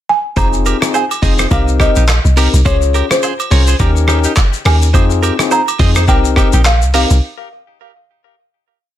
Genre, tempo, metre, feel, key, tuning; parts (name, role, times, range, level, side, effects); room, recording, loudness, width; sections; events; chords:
afrobeats; 105 BPM; 4/4; swing 58% on 16ths; F minor; A4 = 440 Hz
buzzing marimba with soft mallets; melody; 0.1-7.8 s; C5 to Bb5; -18 LUFS; right 1 dB; ping-pong delay
bell-like tine electric piano; accompaniment; 0.4-7.2 s; C4 to Db5; -18 LUFS; left 7 dB
direct-recorded clean electric guitar; riff; 0.4-7.0 s; Eb4 to Eb5; -22 LUFS; right 7 dB; ping-pong delay
deep log drum bass; bass; 0.4-7.2 s; F1 to F2; -12 LUFS; equal
lo-fi sampler-style drum kit; drums; 0.4-7.2 s; handclaps, hi-hat, kick drum, rim click, shaker; -15 LUFS; equal; soft clipping on snare
agogo bells and woodblock; percussion; 0.4-7.1 s; -25 LUFS; right 8 dB
light reverb; dense, heavily limited modern master; -10 LUFS; side -12 dB against mid
0.0-0.4 pickup bar; 0.4-9.0 chorus
break 7.2-9.0; fade-out 7.2-9.0
0.4 Fm7; 1.5 Cm7; 2.7 Dbmaj7; 3.8 Eb7; 4.9 Fm7; 6.1 Cm7; 7.2 N.C.